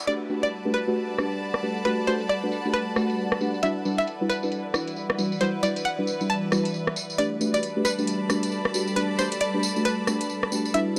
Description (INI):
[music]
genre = UK garage, two-step garage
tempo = 135 BPM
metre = 4/4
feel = swing 60% on 16ths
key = G major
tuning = A4 = 439 Hz
[part]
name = ethereal airy pad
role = sustained chords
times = 0.0-11.0 s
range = E3 to F#5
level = -37 LUFS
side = equal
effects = ensemble chorus, built-in reverb
[part]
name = clear studio string section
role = texture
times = 0.0-11.0 s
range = G3 to B5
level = -35 LUFS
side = equal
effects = none
[part]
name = string-like resonator pluck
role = melody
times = 0.1-10.9 s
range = B4 to A5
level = -30 LUFS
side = equal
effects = chorus, analog delay
[part]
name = deep mellow chord stab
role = stabs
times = 0.1-11.0 s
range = G3 to B4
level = -29 LUFS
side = equal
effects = chorus, analog delay
[part]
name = garage drum kit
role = drums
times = 0.1-11.0 s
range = hi-hat, rim click, tambourine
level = -33 LUFS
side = equal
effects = low-pass filter on hats, small room ambience, low-pass filter on perc, low-pass filter on snare
[sound]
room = light reverb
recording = dry, gritty hardware recording, transformer saturation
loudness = -26 LUFS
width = mono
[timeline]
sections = 0.1-11.0 A section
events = filter sweep on drum 0.1-11.0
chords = 0.1 Gmaj7; 3.6 Em7; 7.2 Gmaj7